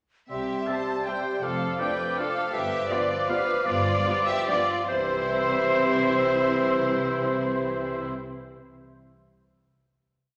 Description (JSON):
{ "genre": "classical, orchestral ballroom waltz", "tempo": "141-172 BPM", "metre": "3/4", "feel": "rubato", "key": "C major", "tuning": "A4 = 440 Hz", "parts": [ { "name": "rich chamber violin section", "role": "melody", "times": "0.3-8.1 s", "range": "C5 to A5", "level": "-36 LUFS", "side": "equal", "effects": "none" }, { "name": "clear clarinet", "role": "second line", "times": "0.3-8.1 s", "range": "G4 to C5", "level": "-34 LUFS", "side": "equal", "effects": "none" }, { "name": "hollow concert flute", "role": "second line", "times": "0.3-8.1 s", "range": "C6 to D6", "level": "-36 LUFS", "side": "equal", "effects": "none" }, { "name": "warm chamber violin section", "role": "second line", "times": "0.3-8.1 s", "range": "F4 to C5", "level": "-35 LUFS", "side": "equal", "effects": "none" }, { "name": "warm oboe", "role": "second line", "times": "0.3-8.1 s", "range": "C5 to A5", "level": "-34 LUFS", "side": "equal", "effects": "none" }, { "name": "mellow bassoon", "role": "accompaniment", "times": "0.3-8.1 s", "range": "E3 to G3", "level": "-34 LUFS", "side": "equal", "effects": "none" }, { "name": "rich chamber double bass section", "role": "bass", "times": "0.3-8.1 s", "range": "F1 to C2", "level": "-38 LUFS", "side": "equal", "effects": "none" }, { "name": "warm symphonic cello section", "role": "bass", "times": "0.3-8.1 s", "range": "F2 to C3", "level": "-39 LUFS", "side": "equal", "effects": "none" }, { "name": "rich studio viola section", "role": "accompaniment", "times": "0.7-8.1 s", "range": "B3 to G4", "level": "-38 LUFS", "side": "equal", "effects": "none" }, { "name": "clear trombone section", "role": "sustained chords", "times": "0.7-8.1 s", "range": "C3 to B3", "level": "-42 LUFS", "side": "equal", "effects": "none" }, { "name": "dark French horn section", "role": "sustained chords", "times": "0.7-8.1 s", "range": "C4 to G4", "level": "-37 LUFS", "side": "equal", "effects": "none" }, { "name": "dark trumpet section", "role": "stabs", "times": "0.7-8.1 s", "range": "D5 to E5", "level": "-36 LUFS", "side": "equal", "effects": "none" } ], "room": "wet concert hall reverb, RT60 2.1 s", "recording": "none", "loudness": "-25 LUFS", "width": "mono", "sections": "0.3-4.9 A section; 4.9-7.3 final chord", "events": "slowing down 2.0-4.9", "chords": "0.3 C; 1.4 Dm/F; 2.5 G7; 4.9 C" }